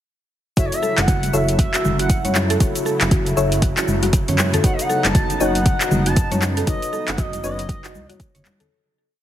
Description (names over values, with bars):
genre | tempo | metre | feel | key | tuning
afro house | 118 BPM | 4/4 | swing 59% on 16ths | F# dorian | A4 = 439 Hz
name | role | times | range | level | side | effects
expressive synth lead | melody | 0.6-8.4 s | C#5 to A5 | -26 LUFS | equal | lush chorus, cassette tape, tape echo
warm analog pad | sustained chords | 0.6-8.7 s | C#3 to E4 | -28 LUFS | right 1 dB | wide subtle chorus, sidechain pumping
mallet-like synth pluck | arpeggios | 0.6-8.7 s | F#4 to E5 | -27 LUFS | equal | chorus, sidechain pumping, tape echo
deep mellow chord stab | stabs | 0.6-8.7 s | D#4 to C#5 | -27 LUFS | left 3 dB | chorus, phaser, sidechain pumping, tape echo
dark detuned saw bass | bass | 0.6-8.4 s | F#1 to F#2 | -23 LUFS | equal | sidechain pumping
deep house drum kit | drums | 0.6-8.7 s | handclaps, hi-hat, shaker | -23 LUFS | equal | overdrive
electronic kick drum | drums | 0.6-8.3 s | none | -19 LUFS | equal | overdrive
congas | percussion | 0.8-8.7 s | none | -26 LUFS | left 1 dB | none
room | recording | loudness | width
light reverb | heavily compressed radio sound, multiband compression | -16 LUFS | side -11 dB against mid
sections
0.6-8.7 drop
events
drop 0.6-8.7; fade-out 6.0-8.7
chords
0.6 F#m7; 4.6 Badd9/F#